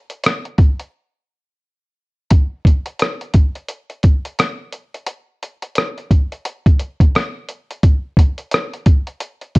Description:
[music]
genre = hip hop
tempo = 87 BPM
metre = 4/4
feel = swing 61% on 16ths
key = none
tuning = none
[part]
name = lo-fi sampler-style drum kit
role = drums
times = 0.1-9.6 s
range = hi-hat, kick drum, rim click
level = -13 LUFS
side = equal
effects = none
[sound]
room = little or no reverb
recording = cassette tape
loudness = -15 LUFS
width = side -27 dB against mid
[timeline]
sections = 0.0-9.6 A section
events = break 0.9-2.3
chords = none

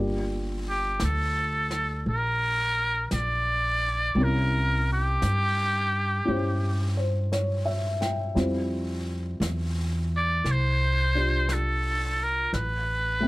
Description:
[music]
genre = jazz ballad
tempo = 57 BPM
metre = 4/4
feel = swing 67% on 8ths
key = G minor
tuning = A4 = 441 Hz
[part]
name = dark baby grand piano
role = accompaniment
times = 0.0-13.3 s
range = G3 to G5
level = -30 LUFS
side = left 1 dB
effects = none
[part]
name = upright bass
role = bass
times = 0.0-13.3 s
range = G1 to G2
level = -27 LUFS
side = equal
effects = none
[part]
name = trumpet with metal mute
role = melody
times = 0.7-13.3 s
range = G4 to D5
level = -26 LUFS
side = equal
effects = none
[part]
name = jazz brush drum kit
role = drums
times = 1.0-13.3 s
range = brushed snare drum, hi-hat, snare drum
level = -39 LUFS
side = equal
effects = none
[sound]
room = light reverb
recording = vinyl crackle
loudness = -24 LUFS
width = side -20 dB against mid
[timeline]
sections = 0.0-13.3 A section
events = none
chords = 0.0 Gm9; 4.2 C7b9; 8.4 Fsus2; 12.5 Asus2

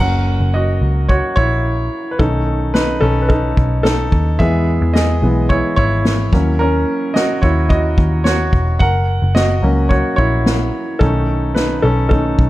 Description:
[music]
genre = piano-driven pop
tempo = 109 BPM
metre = 4/4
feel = straight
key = F# mixolydian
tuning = A4 = 440 Hz
[part]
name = clear baby grand piano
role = accompaniment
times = 0.0-12.5 s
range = D#3 to F#5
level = -17 LUFS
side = equal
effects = none
[part]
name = vintage muted picked electric bass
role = bass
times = 0.0-12.5 s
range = E1 to E2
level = -16 LUFS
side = equal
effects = none
[part]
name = unplugged drum kit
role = drums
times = 1.1-12.5 s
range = kick drum, snare drum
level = -18 LUFS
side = equal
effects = none
[sound]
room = light reverb, small room ambience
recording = none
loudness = -13 LUFS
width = side -16 dB against mid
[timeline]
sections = 0.0-12.5 A section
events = grand piano solo 0.0-12.5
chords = 0.0 F#; 2.2 B7; 4.4 E; 6.3 D#m7; 8.8 F#; 11.0 B7

